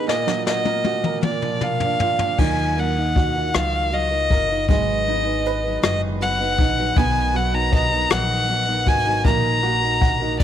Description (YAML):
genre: six-eight pop ballad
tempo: 52 BPM (dotted quarters)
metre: 6/8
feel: straight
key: Eb minor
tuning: A4 = 440 Hz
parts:
  - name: bright violin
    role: melody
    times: 0.0-10.4 s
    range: D5 to A#5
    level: -22 LUFS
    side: left 2 dB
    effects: none
  - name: clear upright piano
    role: accompaniment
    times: 0.0-10.4 s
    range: Bb2 to Gb5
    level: -26 LUFS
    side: right 10 dB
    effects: none
  - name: jazz brush drum kit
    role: drums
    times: 0.1-10.4 s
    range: crash cymbal, hi-hat, kick drum, rim click, snare drum, toms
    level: -22 LUFS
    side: left 2 dB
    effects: none
  - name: fingerpicked steel-string acoustic guitar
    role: arpeggios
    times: 2.4-10.4 s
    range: Ab2 to Cb5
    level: -28 LUFS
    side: equal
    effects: none
  - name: upright bass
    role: bass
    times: 2.4-10.4 s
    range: Gb1 to Eb2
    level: -25 LUFS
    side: equal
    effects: none
room: light reverb, studio reverb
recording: 1960s-style stereo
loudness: -18 LUFS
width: side -10 dB against mid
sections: 0.0-2.4 A section; 2.4-10.4 B section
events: drum fill 0.1-2.4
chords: 0.1 Ebm/Bb; 1.2 Bb; 2.4 Ebmadd9; 4.7 Abm7; 7.0 Bmaj7; 9.2 Ebm/Bb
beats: | 0.08 1.23 | 2.39 3.54 | 4.69 5.83 | 6.97 8.11 | 9.25 10.40